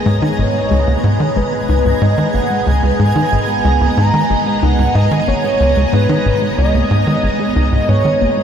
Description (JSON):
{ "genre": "ambient, sequencer-driven space music", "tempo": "92 BPM", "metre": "4/4", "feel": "straight", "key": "G# minor", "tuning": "A4 = 439 Hz", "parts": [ { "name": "string machine, full ensemble", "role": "sustained chords", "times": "0.0-8.4 s", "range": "G#3 to A#5", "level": "-19 LUFS", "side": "right 1 dB", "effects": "phaser, ensemble chorus" }, { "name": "warbly dusty pluck", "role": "arpeggios", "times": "0.0-8.4 s", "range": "G#2 to D#4", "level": "-21 LUFS", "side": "left 2 dB", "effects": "chorus, auto-pan, tape echo" }, { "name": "twinkling granular texture", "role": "texture", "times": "0.0-8.4 s", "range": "G#5", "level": "-27 LUFS", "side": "right 3 dB", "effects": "built-in reverb" }, { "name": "pulse-width lead", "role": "melody", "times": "0.1-8.4 s", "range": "B4 to A#5", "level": "-18 LUFS", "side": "right 1 dB", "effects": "chorus, tape echo" }, { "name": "tight sequencer bass", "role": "riff", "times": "0.1-8.3 s", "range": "G#1 to D#3", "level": "-15 LUFS", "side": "equal", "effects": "tape echo" } ], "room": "wet huge ambient reverb, RT60 7.2 s", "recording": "in a vast, echoing space", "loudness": "-12 LUFS", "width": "side -8 dB against mid", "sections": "0.0-8.4 A section", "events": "none", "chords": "0.0 G#madd9", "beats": "| 0.06 0.71 1.36 2.02 | 2.67 3.32 3.97 4.63 | 5.28 5.93 6.58 7.23 | 7.89" }